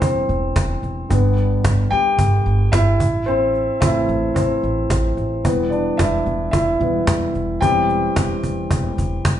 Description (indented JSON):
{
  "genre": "piano-driven pop",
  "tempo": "110 BPM",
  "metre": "4/4",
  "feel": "swing 56% on 16ths",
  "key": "unclear",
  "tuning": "A4 = 444 Hz",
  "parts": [
    { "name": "warm concert grand piano", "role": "accompaniment", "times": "0.0-9.4 s", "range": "D3 to G5", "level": "-19 LUFS", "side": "left 1 dB", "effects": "none" },
    { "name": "upright bass", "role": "bass", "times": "0.0-9.4 s", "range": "E1 to A1", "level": "-21 LUFS", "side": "equal", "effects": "none" },
    { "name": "cajon", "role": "drums", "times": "0.0-9.4 s", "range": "none", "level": "-21 LUFS", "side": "equal", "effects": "none" }
  ],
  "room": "wet large studio reverb, RT60 0.9 s",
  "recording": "band playing live in one room, nothing above 10.6 kHz",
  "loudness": "-16 LUFS",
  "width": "side -11 dB against mid",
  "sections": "0.0-9.4 A section",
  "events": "grand piano solo 0.0-9.4",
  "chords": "0.0 C/E; 1.1 G; 3.0 Am; 5.4 Em; 7.6 C/E",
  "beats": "0.02 0.56 | 1.10 1.64 2.19 2.73 | 3.27 3.81 4.36 4.90 | 5.45 5.99 6.53 7.08 | 7.62 8.16 8.71 9.25"
}